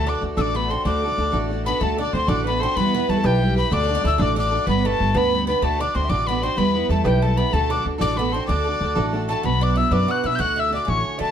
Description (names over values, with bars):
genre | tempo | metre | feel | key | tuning
celtic folk, Celtic jig | 126 BPM (dotted quarters) | 6/8 | straight | D mixolydian | A4 = 440 Hz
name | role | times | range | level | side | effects
tin whistle | melody | 0.0-11.3 s | G5 to G6 | -24 LUFS | left 3 dB | slapback echo, plate reverb
Irish bouzouki | second line | 0.0-11.3 s | G3 to F#4 | -30 LUFS | right 6 dB | none
warm fiddle | second line | 0.0-11.3 s | G4 to F#5 | -29 LUFS | left 5 dB | none
picked steel-string acoustic guitar | accompaniment | 0.0-11.3 s | B2 to D5 | -24 LUFS | right 3 dB | none
upright bass | bass | 0.0-11.3 s | G1 to D3 | -23 LUFS | equal | none
room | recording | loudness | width
moderate studio reverb, RT60 0.6 s | dark, warm production | -18 LUFS | side -9 dB against mid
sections
0.0-1.8 A section; 1.8-9.4 A section; 9.4-11.3 B section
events
none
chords
0.0 D; 2.8 Em; 3.7 D; 4.7 G; 5.6 D; 6.6 Em; 7.5 D; 9.4 Bm; 10.4 D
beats
0.37 | 0.85 1.33 | 1.81 2.28 | 2.76 3.24 | 3.71 4.19 | 4.67 5.14 | 5.62 6.10 | 6.57 7.05 | 7.53 8.00 | 8.48 8.96 | 9.44 9.91 | 10.39 10.87